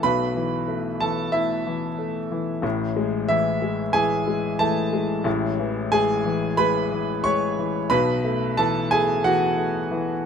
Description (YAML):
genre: neoclassical minimalist piano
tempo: 91 BPM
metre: 4/4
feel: rubato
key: A major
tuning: A4 = 440 Hz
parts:
  - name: clear grand piano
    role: solo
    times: 0.0-10.3 s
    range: A1 to C#6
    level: -21 LUFS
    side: equal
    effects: none
room: little or no reverb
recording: minimal, uncompressed stereo recording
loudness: -21 LUFS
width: side -7 dB against mid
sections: 0.0-10.3 A section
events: none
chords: 0.0 Esus4/B; 2.6 Amaj7; 7.9 Esus4/B